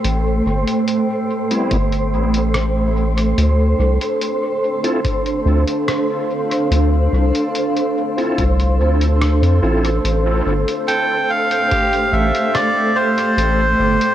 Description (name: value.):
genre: ambient dub.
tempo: 72 BPM.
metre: 4/4.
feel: straight.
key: A minor.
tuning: A4 = 440 Hz.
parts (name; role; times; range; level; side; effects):
granular cloud pad; sustained chords; 0.0-14.1 s; A3 to G5; -20 LUFS; right 1 dB; built-in reverb, cassette tape.
round analog bass; bass; 0.0-14.0 s; G1 to F2; -16 LUFS; equal; none.
lo-fi sampler-style drum kit; drums; 0.0-14.1 s; hi-hat, rim click; -27 LUFS; left 1 dB; cassette tape, dub echo.
wind-like tuned noise texture; texture; 0.0-14.1 s; C5; -26 LUFS; right 2 dB; built-in reverb, cassette tape.
bright tonewheel organ; stabs; 1.5-9.9 s; G3 to A4; -25 LUFS; equal; chorus vibrato, stopped rotary speaker, cassette tape, dub echo.
electronic kick drum; drums; 1.7-11.9 s; none; -24 LUFS; equal; cassette tape.
melodica; melody; 10.9-14.1 s; C5 to G5; -16 LUFS; equal; dub echo.
pedal steel guitar; arpeggios; 10.9-14.0 s; G4 to A4; -25 LUFS; right 2 dB; cassette tape, tape echo.
room: light reverb.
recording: home recording on cassette.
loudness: -15 LUFS.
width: side -11 dB against mid.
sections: 0.0-14.1 A section.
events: none.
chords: 0.0 Am7; 3.4 Dm7; 10.0 Am7.